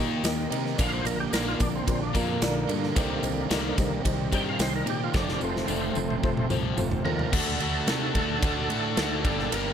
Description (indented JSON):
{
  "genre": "classic rock",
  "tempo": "110 BPM",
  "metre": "4/4",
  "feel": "straight",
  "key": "unclear",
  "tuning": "A4 = 443 Hz",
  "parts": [
    { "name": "honky-tonk upright piano", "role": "accompaniment", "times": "0.0-7.3 s", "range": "F4 to Eb5", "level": "-36 LUFS", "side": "left 6 dB", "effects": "none" },
    { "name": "crunchy overdriven guitar", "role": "riff", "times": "0.0-9.7 s", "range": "F2 to G4", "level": "-32 LUFS", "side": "left 10 dB", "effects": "none" },
    { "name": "overdriven electric guitar", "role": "riff", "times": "0.0-9.7 s", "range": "F2 to G4", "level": "-33 LUFS", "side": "right 13 dB", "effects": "none" },
    { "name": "fuzz fingered electric bass", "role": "bass", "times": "0.0-9.7 s", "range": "F1 to C3", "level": "-32 LUFS", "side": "equal", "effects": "overdrive" },
    { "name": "huge arena drum kit", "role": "drums", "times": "0.2-9.7 s", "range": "crash cymbal, kick drum, ride cymbal, snare drum, toms", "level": "-28 LUFS", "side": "equal", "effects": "none" },
    { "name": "tambourine", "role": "percussion", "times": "0.2-6.9 s", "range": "none", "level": "-42 LUFS", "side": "right 9 dB", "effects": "none" },
    { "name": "overdriven tonewheel organ", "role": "melody", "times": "0.8-9.7 s", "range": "D3 to G5", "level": "-32 LUFS", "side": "right 2 dB", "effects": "slow rotary speaker, chorus vibrato" },
    { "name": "octave-fuzz lead guitar", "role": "second line", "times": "7.1-9.7 s", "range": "D4", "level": "-38 LUFS", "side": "right 3 dB", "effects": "none" }
  ],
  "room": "small room ambience",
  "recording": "none",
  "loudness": "-24 LUFS",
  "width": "side -8 dB against mid",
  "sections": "0.0-7.3 A section; 7.3-9.7 B section",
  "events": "tonewheel organ solo 0.0-7.3; drum fill 5.1-7.3",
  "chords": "0.0 Eb; 0.8 Bb; 3.0 Cm; 5.1 F; 7.3 D"
}